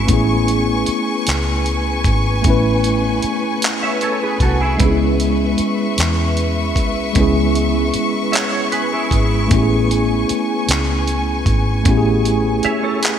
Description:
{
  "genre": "slow six-eight R&B",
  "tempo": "51 BPM (dotted quarters)",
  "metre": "6/8",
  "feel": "straight",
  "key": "A major",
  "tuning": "A4 = 440 Hz",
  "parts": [
    { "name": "semi-hollow electric guitar", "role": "second line", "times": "0.0-0.1, 3.8-13.2 s", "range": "E4 to E5", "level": "-23 LUFS", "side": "right 3 dB", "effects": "ensemble chorus" },
    { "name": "mellow tine electric piano", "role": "accompaniment", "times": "0.0-13.2 s", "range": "G#3 to B4", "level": "-18 LUFS", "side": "equal", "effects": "medium stereo tremolo" },
    { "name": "warm studio string section", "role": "sustained chords", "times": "0.0-13.2 s", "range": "B4 to C#6", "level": "-23 LUFS", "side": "left 3 dB", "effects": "none" },
    { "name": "vintage muted fingered electric bass", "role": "bass", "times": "0.0-12.7 s", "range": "G#1 to E2", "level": "-19 LUFS", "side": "equal", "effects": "none" },
    { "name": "dusty soul sampler-style drum kit", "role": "drums", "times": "0.1-13.2 s", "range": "handclaps, hi-hat, kick drum", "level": "-20 LUFS", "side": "equal", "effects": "gated reverb" }
  ],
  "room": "moderate lush hall reverb, RT60 2.5 s",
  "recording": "bright 1980s-style digital production",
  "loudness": "-14 LUFS",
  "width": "side -9 dB against mid",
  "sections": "0.0-13.2 A section",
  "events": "none",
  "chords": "0.1 Amaj9; 4.8 C#m7; 9.5 Amaj9"
}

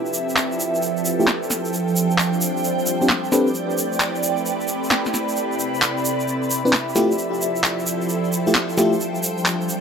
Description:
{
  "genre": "UK garage, two-step garage",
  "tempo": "132 BPM",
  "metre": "4/4",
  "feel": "swing 66% on 16ths",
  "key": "unclear",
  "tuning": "A4 = 441 Hz",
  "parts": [
    { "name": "soft string machine", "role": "sustained chords", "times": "0.0-9.8 s", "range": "C3 to D5", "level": "-27 LUFS", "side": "equal", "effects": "ensemble chorus" },
    { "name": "ethereal airy pad", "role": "texture", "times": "0.0-9.8 s", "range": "F3 to B5", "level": "-23 LUFS", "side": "right 1 dB", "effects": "ensemble chorus, built-in reverb, phaser" },
    { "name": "egg shaker", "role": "percussion", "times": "0.1-9.8 s", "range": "none", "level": "-28 LUFS", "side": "right 2 dB", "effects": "none" },
    { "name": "electronic handclaps and snare drum", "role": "drums", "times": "0.4-9.6 s", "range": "none", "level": "-20 LUFS", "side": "equal", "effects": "low-pass filter on hats, low-pass filter on snare" },
    { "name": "FM electric piano", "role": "stabs", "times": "1.2-3.5, 6.7-8.9 s", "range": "A3 to B4", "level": "-22 LUFS", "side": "left 1 dB", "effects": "chorus, low-pass filter, dub echo" }
  ],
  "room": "moderate plate reverb, RT60 2.0 s",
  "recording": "none",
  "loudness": "-18 LUFS",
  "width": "side -6 dB against mid",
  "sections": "0.0-9.8 A section",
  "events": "filter sweep on FM electric piano 0.0-9.8",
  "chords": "0.0 Fmaj9; 1.7 G7sus4; 3.3 Am11; 5.4 Cmaj9; 7.0 Fmaj9; 9.0 G7sus4"
}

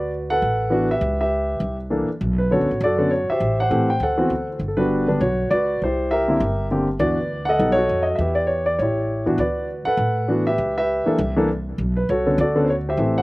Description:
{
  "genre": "jazz piano trio",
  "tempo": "201 BPM",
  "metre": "4/4",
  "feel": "swing 60% on 8ths",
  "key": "D major",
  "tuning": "A4 = 439 Hz",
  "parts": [
    { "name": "warm concert grand piano", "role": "melody", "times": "0.0-13.2 s", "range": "D3 to G5", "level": "-19 LUFS", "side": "equal", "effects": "none" },
    { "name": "upright bass", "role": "bass", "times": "0.0-13.2 s", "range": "F#1 to A2", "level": "-25 LUFS", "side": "equal", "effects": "none" }
  ],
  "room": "little or no reverb",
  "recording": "recorded outdoors, with no room sound",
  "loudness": "-18 LUFS",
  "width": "side -20 dB against mid",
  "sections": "0.0-9.4 A section; 9.4-13.2 A section",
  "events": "none",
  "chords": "0.0 D69; 1.0 C#m7b5; 1.6 C13; 2.2 Bm9; 3.4 Am7; 4.0 D7; 4.6 Gmaj7; 5.8 C9; 7.0 D69; 7.6 B7b13; 8.2 Em; 8.8 A7; 9.4 D69; 10.6 C#m7b5; 11.2 C; 11.8 Bm9"
}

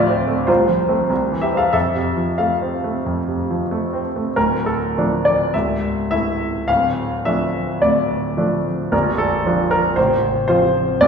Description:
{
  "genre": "classical, romantic character piece for solo piano",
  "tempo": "90-118 BPM",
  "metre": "4/4",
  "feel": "rubato",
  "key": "F major, D minor from 4.4 s",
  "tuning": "A4 = 441 Hz",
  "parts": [
    { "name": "clear baby grand piano", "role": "solo", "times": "0.0-11.1 s", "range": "A0 to F5", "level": "-16 LUFS", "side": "equal", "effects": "none" }
  ],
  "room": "wet recital hall reverb, RT60 1.4 s",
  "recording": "recorded in a church or concert hall, nothing above 11.0 kHz",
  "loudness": "-16 LUFS",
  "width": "side -6 dB against mid",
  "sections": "0.0-4.4 A section; 4.4-11.1 B section",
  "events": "none",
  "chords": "0.5 F/C; 1.1 C; 1.7 F; 4.4 Dm; 5.5 A/C#; 6.7 Dm; 8.9 Bb; 10.0 F/A"
}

